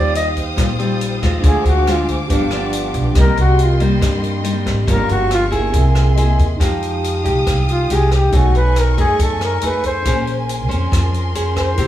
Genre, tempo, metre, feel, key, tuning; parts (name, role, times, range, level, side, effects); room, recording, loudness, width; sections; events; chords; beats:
bossa nova; 139 BPM; 4/4; straight; C minor, F minor from 6.6 s; A4 = 441 Hz
breathy flugelhorn; melody; 0.0-11.9 s; F4 to Eb5; -19 LUFS; left 1 dB; plate reverb
nylon-string guitar; accompaniment; 0.0-11.9 s; G2 to C5; -22 LUFS; left 1 dB
tine electric piano; accompaniment; 0.0-11.9 s; C4 to G#5; -26 LUFS; right 3 dB; medium tremolo
warm symphonic string section; sustained chords; 0.0-11.9 s; Bb4 to Eb6; -27 LUFS; equal
upright bass; bass; 0.0-11.9 s; G1 to G2; -17 LUFS; equal
open jazz drum kit; drums; 0.2-11.9 s; hi-hat, kick drum, rim click; -22 LUFS; left 1 dB
light reverb; small room reverb; -14 LUFS; side -12 dB against mid
0.0-6.6 A section; 6.6-11.9 A section
flugelhorn solo 0.0-11.9; tine electric piano fill 6.0-6.6
0.0 Eb69; 1.4 Dm7b5; 2.3 G7; 3.2 Cm7; 4.9 Gm7b5; 5.7 C7alt; 6.6 Fm9; 8.3 B13; 10.1 Bbm9
0.14 0.57 1.00 | 1.43 1.86 2.29 2.72 | 3.15 3.59 4.02 4.45 | 4.88 5.31 5.74 6.17 | 6.61 7.04 7.47 7.90 | 8.33 8.76 9.19 9.62 | 10.06 10.49 10.92 11.35 | 11.78